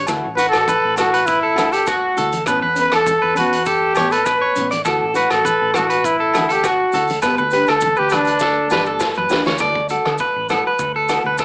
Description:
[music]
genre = highlife guitar band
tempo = 101 BPM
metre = 4/4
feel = straight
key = D major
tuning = A4 = 440 Hz
[part]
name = electric guitar at the edge of break-up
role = arpeggios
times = 0.0-11.4 s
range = F#4 to D5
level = -18 LUFS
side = right 1 dB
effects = cassette tape, analog delay
[part]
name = hollow-body short-scale fingered electric bass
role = bass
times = 0.0-11.4 s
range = G1 to D3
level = -32 LUFS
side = equal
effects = none
[part]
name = nylon-string guitar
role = accompaniment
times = 0.1-11.3 s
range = E3 to G4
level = -24 LUFS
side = left 1 dB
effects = cassette tape
[part]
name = vintage drum kit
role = drums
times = 0.1-11.4 s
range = hi-hat, kick drum, rim click, snare drum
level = -24 LUFS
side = equal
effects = cassette tape
[part]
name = agogo bells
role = percussion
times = 0.1-11.4 s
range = none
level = -26 LUFS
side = left 1 dB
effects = none
[part]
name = maracas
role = percussion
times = 0.1-11.4 s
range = none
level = -34 LUFS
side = left 1 dB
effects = none
[part]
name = growling trumpet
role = melody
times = 0.4-9.0 s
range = D4 to B4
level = -17 LUFS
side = equal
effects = cassette tape
[part]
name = congas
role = percussion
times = 0.7-11.4 s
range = none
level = -32 LUFS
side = equal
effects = none
[sound]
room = light reverb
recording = home recording on cassette, small speaker sound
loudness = -14 LUFS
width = side -28 dB against mid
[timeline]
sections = 0.0-9.6 A section; 9.6-11.4 B section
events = drum fill 8.4-9.6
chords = 0.1 Dadd9; 2.5 Aadd9; 4.9 Dadd9; 7.2 G; 9.6 Dadd9

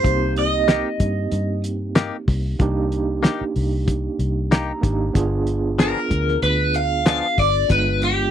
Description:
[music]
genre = straight-eighth soul blues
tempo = 94 BPM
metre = 4/4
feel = straight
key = C minor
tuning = A4 = 440 Hz
[part]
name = overdriven semi-hollow guitar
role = melody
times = 0.0-1.6, 5.8-8.3 s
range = G4 to F5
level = -20 LUFS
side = equal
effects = phaser, slapback echo
[part]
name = overdriven tine electric piano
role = accompaniment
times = 0.0-8.3 s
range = Ab3 to Bb5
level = -25 LUFS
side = right 4 dB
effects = medium tremolo
[part]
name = vintage muted fingered electric bass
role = bass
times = 0.0-8.3 s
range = G1 to G2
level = -23 LUFS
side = left 1 dB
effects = none
[part]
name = cloth-damped thuddy drum kit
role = drums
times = 0.0-8.2 s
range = hi-hat, kick drum, snare drum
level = -19 LUFS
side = equal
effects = none
[part]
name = direct-recorded clean electric guitar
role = stabs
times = 0.7-7.3 s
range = F3 to Ab4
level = -24 LUFS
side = left 7 dB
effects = none
[sound]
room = little or no reverb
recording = dry, close 1970s-style studio recording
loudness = -18 LUFS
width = side -9 dB against mid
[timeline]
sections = 0.0-8.3 A section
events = tine electric piano fill 4.2-5.1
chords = 0.0 Cm7; 5.1 G7b9

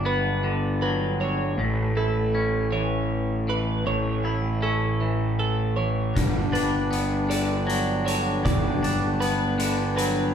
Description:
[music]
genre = post-rock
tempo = 52 BPM (dotted quarters)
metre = 6/8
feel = straight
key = unclear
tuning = A4 = 438 Hz
[part]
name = twangy electric guitar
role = arpeggios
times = 0.0-10.3 s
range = G2 to E4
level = -28 LUFS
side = left 2 dB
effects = none
[part]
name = twelve-string electric guitar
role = arpeggios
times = 0.0-10.3 s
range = A4 to D5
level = -30 LUFS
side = right 3 dB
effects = none
[part]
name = fuzz picked electric bass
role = bass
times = 0.0-10.3 s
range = G1 to A1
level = -25 LUFS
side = equal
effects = overdrive
[part]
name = hand-pumped harmonium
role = sustained chords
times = 6.1-10.3 s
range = D4 to G5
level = -33 LUFS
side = right 1 dB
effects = none
[part]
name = oversized low-tuned drum kit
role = drums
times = 6.2-10.2 s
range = hi-hat, kick drum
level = -28 LUFS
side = equal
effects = none
[sound]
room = wet large studio reverb, RT60 0.9 s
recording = band playing live in one room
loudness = -22 LUFS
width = side -8 dB against mid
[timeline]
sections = 0.0-10.3 A section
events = none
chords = 0.0 Gmaj7; 1.6 A; 6.2 Gmaj7

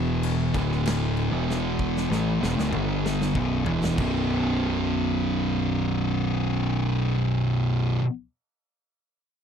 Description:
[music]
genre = stoner and doom metal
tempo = 95 BPM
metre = 4/4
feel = straight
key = B minor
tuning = A4 = 439 Hz
[part]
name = thick fuzz guitar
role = riff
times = 0.0-8.0 s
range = B1 to A3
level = -26 LUFS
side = left 7 dB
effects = distortion
[part]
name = thick fuzz guitar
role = riff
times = 0.0-8.0 s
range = B1 to A3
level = -27 LUFS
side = right 9 dB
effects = distortion
[part]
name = growling picked electric bass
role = bass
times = 0.0-8.0 s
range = B0 to A1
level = -31 LUFS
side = equal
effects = overdrive
[part]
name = big rock drum kit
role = drums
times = 0.2-4.1 s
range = crash cymbal, kick drum, snare drum, toms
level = -32 LUFS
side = equal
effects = none
[sound]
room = little or no reverb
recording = dry, close 1970s-style studio recording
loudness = -22 LUFS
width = side -8 dB against mid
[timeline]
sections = 0.0-4.0 A section; 4.0-6.5 B section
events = drum fill 1.5-4.0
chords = 0.0 E5; 0.5 D5; 1.3 E5; 2.1 D5; 2.7 G5; 3.4 Bsus4; 4.0 B5

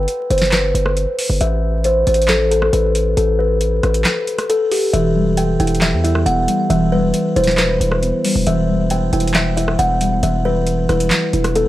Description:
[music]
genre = hip hop, trap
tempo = 136 BPM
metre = 4/4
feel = half-time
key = E minor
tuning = A4 = 440 Hz
[part]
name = buzzing kalimba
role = melody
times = 0.0-11.7 s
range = G4 to G5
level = -18 LUFS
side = left 1 dB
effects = low-pass filter, tape echo
[part]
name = distorted 808-style bass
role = bass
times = 0.0-11.7 s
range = E1 to E2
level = -19 LUFS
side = equal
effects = distortion
[part]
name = booming analog drum machine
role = drums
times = 0.1-11.7 s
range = handclaps, hi-hat, rim click, snare drum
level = -20 LUFS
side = equal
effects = none
[part]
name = muted felt-like synth keys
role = accompaniment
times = 4.9-11.7 s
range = E3 to E4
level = -19 LUFS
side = right 1 dB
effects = chorus, low-pass filter
[sound]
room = little or no reverb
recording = dry, gritty hardware recording, vinyl crackle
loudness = -14 LUFS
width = side -15 dB against mid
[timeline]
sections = 0.0-11.7 A section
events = filter sweep 0.0-4.9; kick muted 4.1-4.9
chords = 0.0 G; 1.4 A5; 4.9 Em

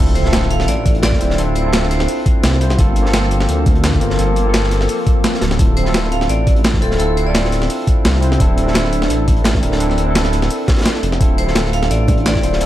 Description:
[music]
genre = liquid drum and bass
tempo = 171 BPM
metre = 4/4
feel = swing 53% on 16ths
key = D minor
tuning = A4 = 440 Hz
[part]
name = barky tine electric piano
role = accompaniment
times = 0.0-12.7 s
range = Bb3 to C5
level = -21 LUFS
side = equal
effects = overdrive, dub echo
[part]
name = glassy FM pad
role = sustained chords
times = 0.0-12.7 s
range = F3 to A4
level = -26 LUFS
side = right 1 dB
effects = ensemble chorus, built-in reverb, sidechain pumping
[part]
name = dark detuned saw bass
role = bass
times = 0.0-12.7 s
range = D1 to D2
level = -17 LUFS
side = equal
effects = none
[part]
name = impact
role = sound effects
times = 0.0-1.4 s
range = none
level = -22 LUFS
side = equal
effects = none
[part]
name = vibraphone with hard mallets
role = melody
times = 0.2-2.2, 5.8-7.6, 11.4-12.6 s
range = A4 to F5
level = -23 LUFS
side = right 2 dB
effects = dub echo
[part]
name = breakbeat sampler-style drum kit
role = drums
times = 0.2-12.7 s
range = hi-hat, snare drum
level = -20 LUFS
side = equal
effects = none
[part]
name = crunchy breakbeat drum kit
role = drums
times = 0.2-12.7 s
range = hi-hat, snare drum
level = -26 LUFS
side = equal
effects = high-pass filter on hats, high-pass filter on snare, high-pass filter on room
[part]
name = electronic kick drum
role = drums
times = 0.9-12.4 s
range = none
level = -15 LUFS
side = equal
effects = none
[part]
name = bongos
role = percussion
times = 12.1-12.2 s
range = none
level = -25 LUFS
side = right 3 dB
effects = none
[sound]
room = light reverb, small room ambience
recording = dark, warm production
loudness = -13 LUFS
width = side -13 dB against mid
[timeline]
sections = 0.0-12.7 A section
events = impact 0.0-1.4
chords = 0.0 Dm9; 2.8 Gm11; 5.4 Dm9; 8.4 Bbmaj9#11/D; 11.2 Dm9

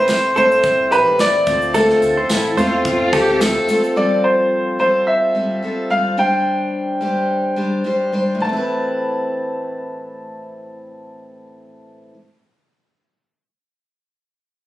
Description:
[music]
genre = acoustic pop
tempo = 108 BPM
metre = 4/4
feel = swing 55% on 16ths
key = A minor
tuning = A4 = 440 Hz
[part]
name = clear upright piano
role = melody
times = 0.0-12.1 s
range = A4 to A5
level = -17 LUFS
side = equal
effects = none
[part]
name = picked steel-string acoustic guitar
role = accompaniment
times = 0.0-12.2 s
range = A2 to C5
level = -20 LUFS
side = left 1 dB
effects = none
[part]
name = direct-recorded clean electric guitar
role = arpeggios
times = 0.0-3.4 s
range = G4 to C5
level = -24 LUFS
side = right 2 dB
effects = none
[part]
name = warm sub bass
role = bass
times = 0.0-3.6 s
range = E1 to E2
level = -31 LUFS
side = equal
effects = none
[part]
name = modern studio drum kit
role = drums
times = 0.1-4.0 s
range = kick drum, shaker, snare drum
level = -23 LUFS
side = equal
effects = none
[part]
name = tambourine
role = percussion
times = 0.1-3.8 s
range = none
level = -31 LUFS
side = right 3 dB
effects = none
[part]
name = dark cello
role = second line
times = 2.3-4.0 s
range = E4 to A4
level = -19 LUFS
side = left 1 dB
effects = none
[sound]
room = moderate studio reverb, RT60 0.9 s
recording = recorded on a phone in the room, studio reverb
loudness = -15 LUFS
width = side -15 dB against mid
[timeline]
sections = 0.0-4.0 A section; 4.0-8.4 B section; 8.4-10.6 C section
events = none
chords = 0.0 Amadd9; 1.5 Dm7; 4.0 Fadd9; 6.2 Gsus4; 8.4 Amadd9

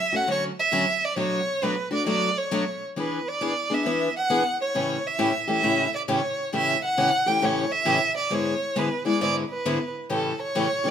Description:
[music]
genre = jazz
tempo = 134 BPM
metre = 4/4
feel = swing 65% on 8ths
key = unclear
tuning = A4 = 440 Hz
[part]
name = warm violin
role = melody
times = 0.0-10.9 s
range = A4 to G5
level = -24 LUFS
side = right 2 dB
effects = none
[part]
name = picked steel-string acoustic guitar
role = accompaniment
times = 0.1-10.9 s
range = G#2 to G#4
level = -26 LUFS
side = left 2 dB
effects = none
[sound]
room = moderate studio reverb, RT60 0.9 s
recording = minimal, uncompressed stereo recording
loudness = -22 LUFS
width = side -8 dB against mid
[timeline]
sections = 0.0-10.9 A section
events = none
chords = 0.0 Dmaj7; 1.2 Bm7; 3.0 E7; 4.7 A7; 8.3 E7/G#; 10.1 A7

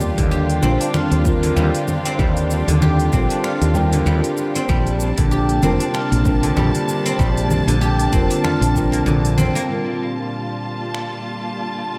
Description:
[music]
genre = organic downtempo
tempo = 96 BPM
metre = 4/4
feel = swing 56% on 16ths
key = G minor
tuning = A4 = 440 Hz
[part]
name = warm chamber string section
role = sustained chords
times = 0.0-12.0 s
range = Bb2 to A5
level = -28 LUFS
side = equal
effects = sidechain pumping
[part]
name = guzheng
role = arpeggios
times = 0.0-12.0 s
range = D3 to G4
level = -24 LUFS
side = equal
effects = analog delay
[part]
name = woody fretless electric bass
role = bass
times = 0.0-9.5 s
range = F1 to Eb2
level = -21 LUFS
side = equal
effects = sidechain pumping
[part]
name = afro-pop drum kit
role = drums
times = 0.0-11.1 s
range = congas, finger snaps, hi-hat, shaker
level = -28 LUFS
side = equal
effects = none
[part]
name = electronic kick drum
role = drums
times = 0.2-8.9 s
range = none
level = -23 LUFS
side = equal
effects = overdrive
[part]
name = felt-muted upright piano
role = accompaniment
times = 0.6-12.0 s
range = D3 to Bb4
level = -26 LUFS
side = equal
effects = subtle chorus, sidechain pumping, analog delay
[sound]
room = wet lush hall reverb, RT60 1.7 s, studio ambience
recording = dreamy mix soaked in reverb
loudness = -18 LUFS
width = mono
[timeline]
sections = 0.0-9.7 A section; 9.7-12.0 B section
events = none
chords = 0.0 Ebmaj9; 4.7 Bbmaj9; 9.7 Gm9

